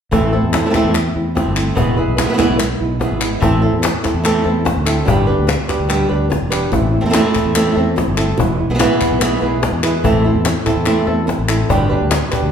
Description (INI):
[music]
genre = flamenco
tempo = 145 BPM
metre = 4/4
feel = straight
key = A minor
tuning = A4 = 440 Hz
[part]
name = flamenco guitar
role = melody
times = 0.1-12.5 s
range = E3 to B4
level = -18 LUFS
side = right 2 dB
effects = none
[part]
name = flamenco guitar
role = stabs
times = 0.1-12.5 s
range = B2 to G4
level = -22 LUFS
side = right 1 dB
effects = none
[part]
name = fretless electric bass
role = bass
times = 0.1-12.5 s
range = E1 to E2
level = -19 LUFS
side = equal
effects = none
[part]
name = cajon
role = percussion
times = 0.1-12.5 s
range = none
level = -21 LUFS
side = left 3 dB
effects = none
[part]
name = palmas hand claps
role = percussion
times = 0.5-12.5 s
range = none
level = -24 LUFS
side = left 4 dB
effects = none
[sound]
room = wet large studio reverb, RT60 1.3 s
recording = band playing live in one room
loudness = -13 LUFS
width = side -8 dB against mid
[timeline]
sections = 0.1-12.5 A section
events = none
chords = 0.1 Am; 1.8 E; 3.4 Am; 5.1 G; 6.7 Am; 8.4 E; 10.0 Am; 11.7 G